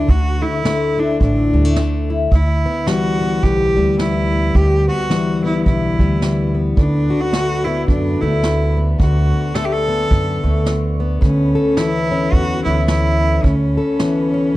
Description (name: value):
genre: acoustic folk duo or small band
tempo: 108 BPM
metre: 4/4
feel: swing 59% on 8ths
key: unclear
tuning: A4 = 439 Hz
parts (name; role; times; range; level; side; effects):
- clear cello; melody; 0.0-14.6 s; C#4 to A4; -20 LUFS; right 1 dB; slapback echo
- fingerpicked plugged-in steel-string acoustic guitar; accompaniment; 0.0-14.6 s; D2 to A4; -20 LUFS; left 3 dB; none
- upright bass; bass; 0.0-13.8 s; A1 to F#2; -18 LUFS; right 1 dB; none
- vintage brush drum kit; drums; 0.1-14.1 s; kick drum, snare drum; -17 LUFS; right 1 dB; none
- mellow tonewheel organ; sustained chords; 6.8-14.6 s; A4 to C#6; -30 LUFS; right 1 dB; slow rotary speaker
room: small room ambience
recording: dry, close 1970s-style studio recording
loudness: -14 LUFS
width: side -16 dB against mid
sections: 0.0-14.6 A section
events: none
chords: 0.0 Dadd9; 2.3 Emadd9; 6.8 Bm7/D; 11.2 Aadd9/D